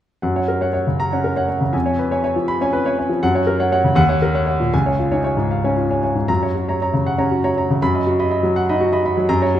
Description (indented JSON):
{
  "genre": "classical, virtuoso piano study",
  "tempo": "80 BPM (dotted quarters)",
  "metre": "6/8",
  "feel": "rubato",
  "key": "F# major",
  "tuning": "A4 = 440 Hz",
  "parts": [
    { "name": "clear grand piano", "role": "solo", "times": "0.2-9.6 s", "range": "C#2 to B5", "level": "-16 LUFS", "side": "equal", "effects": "none" }
  ],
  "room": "moderate scoring stage reverb, RT60 1.8 s",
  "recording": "none",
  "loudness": "-16 LUFS",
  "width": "side -11 dB against mid",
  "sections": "0.2-9.6 A section",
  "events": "none",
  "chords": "0.2 F#; 1.7 C#7/E#; 3.2 F#; 4.0 D#m7; 4.7 C#; 6.3 F#; 7.8 B/F#",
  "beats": "| 0.22 0.99 | 1.75 2.48 | 3.22 3.97 | 4.72 5.50 | 6.29 7.05 | 7.80 8.54 | 9.28"
}